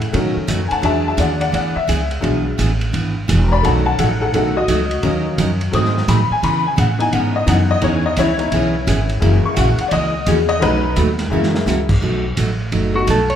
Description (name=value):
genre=country, western swing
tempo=172 BPM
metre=4/4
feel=swing 64% on 8ths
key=B mixolydian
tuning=A4 = 439 Hz
part: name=honky-tonk upright piano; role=accompaniment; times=0.0-13.1 s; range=D#3 to D#6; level=-19 LUFS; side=left 3 dB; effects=none
part: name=upright bass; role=bass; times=0.0-13.4 s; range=E1 to C#3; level=-19 LUFS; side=equal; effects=none
part: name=vintage drum kit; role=drums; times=0.0-13.4 s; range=crash cymbal, hi-hat, kick drum, ride cymbal, snare drum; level=-25 LUFS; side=right 1 dB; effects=none
part: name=picked steel-string acoustic guitar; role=accompaniment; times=0.1-13.2 s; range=B2 to A#4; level=-21 LUFS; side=right 3 dB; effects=none
part: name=clean lap steel guitar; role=melody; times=13.0-13.4 s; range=F#4 to C#5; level=-16 LUFS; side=right 1 dB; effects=none
room=wet large studio reverb, RT60 1.3 s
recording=band playing live in one room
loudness=-14 LUFS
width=side -9 dB against mid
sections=0.0-12.0 A section; 12.0-13.4 A section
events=honky-tonk piano solo 0.0-12.0; drum fill 11.3-11.7; electric slide guitar solo 12.0-13.4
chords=0.1 B7; 0.8 E7; 3.6 B7; 5.0 D#m7; 5.7 G#7b9; 6.4 C#m7; 9.2 F#7; 10.6 B7; 11.3 F#7; 12.0 B7